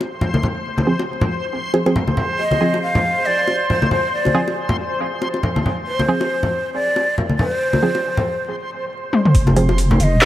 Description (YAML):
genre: deep dubstep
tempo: 138 BPM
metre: 4/4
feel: swing 57% on 16ths, half-time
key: F dorian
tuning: A4 = 442 Hz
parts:
  - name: filtered dub chord stab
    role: stabs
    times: 0.0-10.3 s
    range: F3 to Ab4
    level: -23 LUFS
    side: right 2 dB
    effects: chorus, dub echo
  - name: bongos and congas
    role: percussion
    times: 0.0-10.0 s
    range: none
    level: -21 LUFS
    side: left 1 dB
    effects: none
  - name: backwards swelling texture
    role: texture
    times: 0.0-8.5 s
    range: C5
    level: -25 LUFS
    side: equal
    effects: built-in reverb
  - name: breathy ney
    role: melody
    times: 2.4-10.3 s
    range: C5 to F5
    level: -21 LUFS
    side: equal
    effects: dub echo
  - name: garage drum kit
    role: drums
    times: 9.1-10.3 s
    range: handclaps, hi-hat, snare drum, toms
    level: -15 LUFS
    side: left 1 dB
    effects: overdrive, studio reverb
  - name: deep soft wobble bass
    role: bass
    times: 9.3-10.3 s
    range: F1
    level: -16 LUFS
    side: equal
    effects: chorus
  - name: electronic kick drum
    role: drums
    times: 9.3-9.4 s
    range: none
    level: -17 LUFS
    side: equal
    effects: studio reverb
room: light reverb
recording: vinyl crackle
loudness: -16 LUFS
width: side -13 dB against mid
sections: 0.0-9.3 A section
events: drum fill 9.1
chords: 0.0 Fm